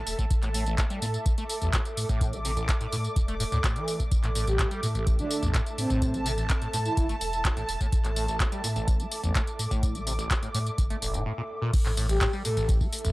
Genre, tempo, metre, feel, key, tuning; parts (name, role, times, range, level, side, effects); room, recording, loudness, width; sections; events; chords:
acid house; 126 BPM; 4/4; straight; A4 = 440 Hz
warm sub bass; bass; 0.0-13.1 s; E1 to A2; -31 LUFS; equal; sidechain pumping
granular cloud pad; texture; 0.0-13.1 s; A4 to D6; -34 LUFS; right 1 dB; built-in reverb, sidechain pumping
booming analog drum machine; drums; 0.1-13.1 s; crash cymbal, handclaps, hi-hat, tambourine; -33 LUFS; equal
liquid acid bass; riff; 0.2-13.1 s; A1 to A3; -33 LUFS; equal; phaser, overdrive, lush chorus, sidechain pumping
electronic kick drum; drums; 0.2-12.9 s; -26 LUFS; equal
breathy flute-like synth lead; melody; 4.5-7.0, 12.1-12.7 s; C4 to A4; -32 LUFS; equal; lush chorus, cassette tape, tape echo
light reverb; dry, gritty hardware recording, cassette tape; -24 LUFS; side -20 dB against mid
0.0-11.7 A section; 11.7-13.1 B section
break 11.3-11.7; drop 11.7-13.1
0.0 A5